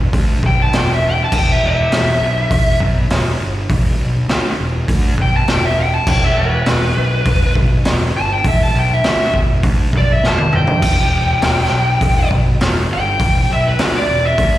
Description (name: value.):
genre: blues rock power trio and southern rock.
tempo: 101 BPM.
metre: 4/4.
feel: straight.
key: E minor.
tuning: A4 = 436 Hz.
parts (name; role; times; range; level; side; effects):
fuzz picked electric bass; bass; 0.0-14.6 s; E1 to D2; -18 LUFS; equal; overdrive.
raw garage drum kit; drums; 0.1-14.5 s; crash cymbal, hi-hat, kick drum, snare drum, toms; -16 LUFS; equal; none.
fuzz lead guitar; melody; 0.5-14.6 s; B4 to A5; -18 LUFS; equal; distortion, slapback echo.
room: studio reverb.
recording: live gig heard through the venue's PA, recital hall reverb.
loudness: -13 LUFS.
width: side -14 dB against mid.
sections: 0.0-14.6 A section.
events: lead electric guitar solo 0.0-14.6; drum fill 10.2-10.8.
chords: 0.0 Em.